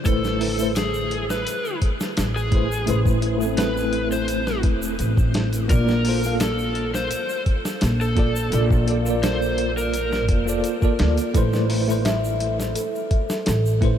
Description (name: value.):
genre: trip hop.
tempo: 85 BPM.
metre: 4/4.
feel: straight.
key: A harmonic minor.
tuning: A4 = 441 Hz.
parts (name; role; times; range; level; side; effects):
bell-like tine electric piano; accompaniment; 0.0-14.0 s; A3 to F5; -25 LUFS; equal; fast stereo tremolo, low-pass filter, tape echo.
egg shaker; percussion; 0.0-13.8 s; none; -40 LUFS; right 2 dB; none.
overdriven slide guitar; melody; 0.1-10.2 s; G#4 to C5; -27 LUFS; equal; lush chorus, tape echo.
upright bass; bass; 0.1-14.0 s; E1 to D2; -23 LUFS; equal; none.
dusty soul sampler-style drum kit; drums; 0.1-14.0 s; hi-hat, kick drum, snare drum; -24 LUFS; equal; small room ambience.
celesta; arpeggios; 11.3-14.0 s; A4 to E5; -27 LUFS; equal; tape echo.
room: moderate huge ambient reverb, RT60 7.9 s.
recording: dreamy mix soaked in reverb.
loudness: -19 LUFS.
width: side -9 dB against mid.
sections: 0.1-14.0 A section.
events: filter sweep on tine electric piano 0.1-14.0.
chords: 0.1 Amadd9; 5.7 Bbmaj7; 11.3 Amadd9.